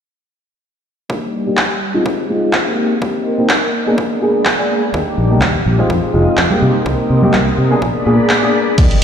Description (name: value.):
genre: filtered disco house.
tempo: 125 BPM.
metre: 4/4.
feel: swing 54% on 16ths.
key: unclear.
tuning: A4 = 440 Hz.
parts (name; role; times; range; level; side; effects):
dark grand piano; accompaniment; 1.1-9.0 s; Ab3 to Bb4; -17 LUFS; left 1 dB; phaser, sidechain pumping, low-pass filter.
string machine, full ensemble; sustained chords; 1.1-9.0 s; Eb3 to Eb6; -20 LUFS; equal; ensemble chorus, vintage 12-bit sampler grit, sidechain pumping, low-pass filter.
electronic kick drum; drums; 1.1-8.9 s; none; -19 LUFS; equal; high-pass filter on kick, high-pass filter on room.
punchy analog drum machine; drums; 1.6-9.0 s; crash cymbal, handclaps, hi-hat; -19 LUFS; equal; sidechain pumping on hats, sidechain pumping on cymbals.
fingered electric bass; bass; 4.9-8.9 s; F1 to C3; -15 LUFS; equal; tube saturation, sidechain pumping, low-pass filter.
egg shaker and congas; percussion; 4.9-9.0 s; none; -20 LUFS; right 3 dB; sidechain pumping on perc, low-pass filter on perc.
room: moderate echo chamber reverb, RT60 2.1 s.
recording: played on a big sound system in a bare room, stone room reverb.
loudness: -12 LUFS.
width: side -8 dB against mid.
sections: 1.1-8.8 A section.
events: filter sweep 1.1-8.8; kick drops out 8.3-8.8.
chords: 1.1 Ebmaj7; 2.1 Fm7; 2.8 Cm7; 4.0 Bb7b9; 4.9 Ebmaj7; 5.9 Fm7; 6.6 Cm7; 7.8 Bb7b9.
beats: | 1.10 1.58 2.06 2.54 | 3.02 3.50 3.98 4.46 | 4.94 5.42 5.90 6.38 | 6.86 7.34 7.82 8.30 | 8.78.